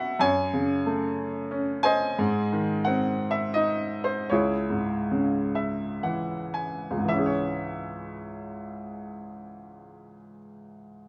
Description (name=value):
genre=classical, lyrical solo piano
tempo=54-93 BPM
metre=3/4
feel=rubato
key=C# minor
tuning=A4 = 444 Hz
part: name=bright baby grand piano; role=solo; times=0.0-11.1 s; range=C#2 to B5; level=-28 LUFS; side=equal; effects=none
room=moderate studio reverb, RT60 0.5 s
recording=none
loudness=-27 LUFS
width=mono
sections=0.0-7.1 A section; 7.1-11.1 B section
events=slowing down 2.2-7.1; grand piano fill 5.1-7.1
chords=0.2 F#madd9; 2.2 G#; 4.3 C#m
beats=| 0.21 0.86 1.52 | 2.19 2.86 3.56 | 4.32 5.12 6.03 | 7.09 8.16 9.18 | 10.19